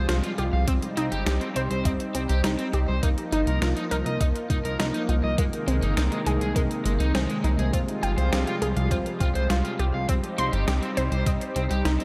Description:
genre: synthwave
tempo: 102 BPM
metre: 4/4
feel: straight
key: C minor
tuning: A4 = 441 Hz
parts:
  - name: lush unison pad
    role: sustained chords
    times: 0.0-12.0 s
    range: C3 to F4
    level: -32 LUFS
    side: equal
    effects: chorus, sidechain pumping
  - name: warbly dusty pluck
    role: arpeggios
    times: 0.0-12.0 s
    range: Bb3 to C6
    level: -34 LUFS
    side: equal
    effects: chorus, diffuse ambient delay
  - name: crunchy overdriven guitar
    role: riff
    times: 0.0-12.0 s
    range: Ab3 to F5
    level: -35 LUFS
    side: equal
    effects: lush chorus, vintage 12-bit sampler grit, diffuse ambient delay
  - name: chorused synth bass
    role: bass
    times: 0.0-12.0 s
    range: G1 to C2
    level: -28 LUFS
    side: equal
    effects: sidechain pumping
  - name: clean 12-bit digital drum machine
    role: drums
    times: 0.1-12.0 s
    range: hi-hat, snare drum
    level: -36 LUFS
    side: equal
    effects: overdrive
  - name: electronic kick drum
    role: drums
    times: 0.7-11.4 s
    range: none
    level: -28 LUFS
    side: equal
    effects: overdrive
room: moderate plate reverb, RT60 2.4 s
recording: dreamy mix soaked in reverb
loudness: -25 LUFS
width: mono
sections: 0.0-12.0 A section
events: none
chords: 0.0 Fmadd9; 0.7 Cm; 3.0 Ebsus2; 5.4 Abadd9; 7.7 Fmadd9; 10.1 Cm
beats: 0.09 | 0.68 1.26 1.85 2.44 | 3.03 3.62 4.21 4.79 | 5.38 5.97 6.56 7.15 | 7.74 8.32 8.91 9.50 | 10.09 10.68 11.27 11.85

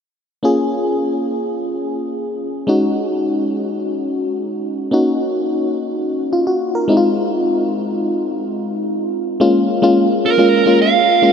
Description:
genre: pop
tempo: 107 BPM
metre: 4/4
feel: straight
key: Bb minor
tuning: A4 = 440 Hz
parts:
  - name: FM electric piano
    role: accompaniment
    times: 0.4-11.3 s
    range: Ab3 to Bb4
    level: -15 LUFS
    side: left 1 dB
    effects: chorus
  - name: dark smooth lead guitar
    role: melody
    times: 10.3-11.3 s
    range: Bb4 to F5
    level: -12 LUFS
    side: right 8 dB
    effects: overdrive, diffuse ambient delay
room: wet huge ambient reverb, RT60 9.0 s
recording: dreamy mix soaked in reverb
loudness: -15 LUFS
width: side -7 dB against mid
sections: 0.4-9.4 A section; 9.4-11.3 B section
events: none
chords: 0.4 Bbm7; 2.7 Ab7sus4; 4.9 Ebm7; 6.9 Fm7; 9.4 Bbm7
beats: | 0.44 1.00 1.56 2.12 | 2.68 3.24 3.80 4.36 | 4.92 5.49 6.05 6.61 | 7.17 7.73 8.29 8.85 | 9.41 9.97 10.53 11.09

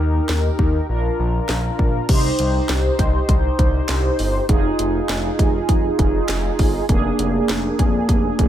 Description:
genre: synth-pop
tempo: 100 BPM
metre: 4/4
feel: straight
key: C minor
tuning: A4 = 440 Hz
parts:
  - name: mellow synth brass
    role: accompaniment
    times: 0.0-8.5 s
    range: Bb3 to C5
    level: -21 LUFS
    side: right 1 dB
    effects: chorus
  - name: smooth synth bass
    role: bass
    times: 0.0-8.5 s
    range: F1 to Eb2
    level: -22 LUFS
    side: equal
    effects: none
  - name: house drum kit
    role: drums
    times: 0.3-8.5 s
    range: crash cymbal, handclaps, hi-hat, kick drum, snare drum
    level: -20 LUFS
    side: equal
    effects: none
room: digital ambience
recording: none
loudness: -16 LUFS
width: side -11 dB against mid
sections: 0.0-2.1 A section; 2.1-8.5 B section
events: none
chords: 0.0 Eb; 0.9 Bb; 2.1 Cm; 4.5 Fm7; 6.9 Bb7/F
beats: 0.29 0.89 1.49 | 2.09 2.69 3.29 3.89 | 4.49 5.09 5.69 6.29 | 6.89 7.49 8.09

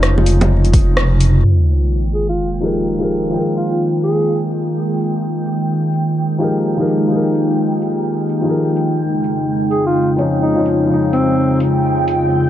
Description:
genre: future garage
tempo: 127 BPM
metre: 4/4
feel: swing 63% on 16ths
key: F minor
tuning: A4 = 441 Hz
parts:
  - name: felt-muted upright piano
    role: accompaniment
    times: 0.0-12.5 s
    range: Db3 to G5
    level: -20 LUFS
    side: left 2 dB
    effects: sidechain pumping, analog delay
  - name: warbly tape-like pad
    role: sustained chords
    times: 0.0-12.5 s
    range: F2 to G5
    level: -18 LUFS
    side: right 1 dB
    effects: chorus, built-in reverb, sidechain pumping
  - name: dark detuned saw bass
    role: bass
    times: 0.0-1.4 s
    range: F1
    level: -13 LUFS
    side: equal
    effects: sidechain pumping
  - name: deep house drum kit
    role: drums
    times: 0.0-12.2 s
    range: bongos, hi-hat, rim click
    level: -20 LUFS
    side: right 1 dB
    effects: none
  - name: electronic kick drum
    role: drums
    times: 0.7-0.9 s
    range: none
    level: -12 LUFS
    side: equal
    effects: none
  - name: sub drop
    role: sound effects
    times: 1.4-3.3 s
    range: none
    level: -17 LUFS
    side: equal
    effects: none
  - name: backwards swelling texture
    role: texture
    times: 2.3-12.5 s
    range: G5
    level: -27 LUFS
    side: right 3 dB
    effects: built-in reverb
  - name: warm alto saxophone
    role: melody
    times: 2.1-4.4, 9.7-11.6 s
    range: C4 to Ab4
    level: -21 LUFS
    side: equal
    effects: analog delay
room: light reverb, digital ambience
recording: vinyl crackle, low-pass filter, nothing above 10.8 kHz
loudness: -14 LUFS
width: side -12 dB against mid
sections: 0.0-1.4 A section; 1.4-12.5 B section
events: band accent 1.0; impact 1.4-3.3; filter sweep 1.4-12.5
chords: 0.0 Dbadd9/F; 1.4 Fm11; 9.0 Dbadd9/F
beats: 0.03 0.50 0.97 | 1.45 1.92 2.39 2.86 | 3.33 3.81 4.28 4.75 | 5.22 5.70 6.17 6.64 | 7.11 7.59 8.06 8.53 | 9.00 9.48 9.95 10.42 | 10.89 11.37 11.84 12.31

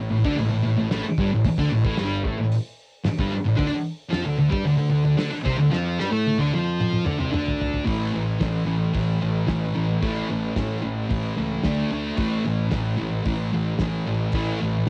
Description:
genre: garage rock duo or trio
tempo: 112 BPM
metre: 4/4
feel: straight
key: unclear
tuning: A4 = 439 Hz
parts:
  - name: thick fuzz guitar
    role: riff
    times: 0.0-14.9 s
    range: G2 to A4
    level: -25 LUFS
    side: equal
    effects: distortion
  - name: fuzz picked electric bass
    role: bass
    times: 0.0-14.8 s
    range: G1 to A2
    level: -33 LUFS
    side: equal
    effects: overdrive
  - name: cloth-damped thuddy drum kit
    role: drums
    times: 0.2-14.9 s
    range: hi-hat, kick drum, snare drum, toms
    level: -30 LUFS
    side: equal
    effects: cassette tape
room: light reverb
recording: home recording on cassette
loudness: -24 LUFS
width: mono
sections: 0.0-7.9 A section; 7.9-14.9 B section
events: drum fill 5.7-7.9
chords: 0.0 Gsus2; 3.6 D5; 7.9 A5; 11.6 D5; 12.2 A5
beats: 0.37 0.90 | 1.44 1.98 2.51 3.05 | 3.58 4.12 4.66 5.19 | 5.73 6.26 6.80 7.34 | 7.87 8.41 8.95 9.48 | 10.02 10.56 11.10 11.64 | 12.18 12.72 13.26 13.80 | 14.34 14.88

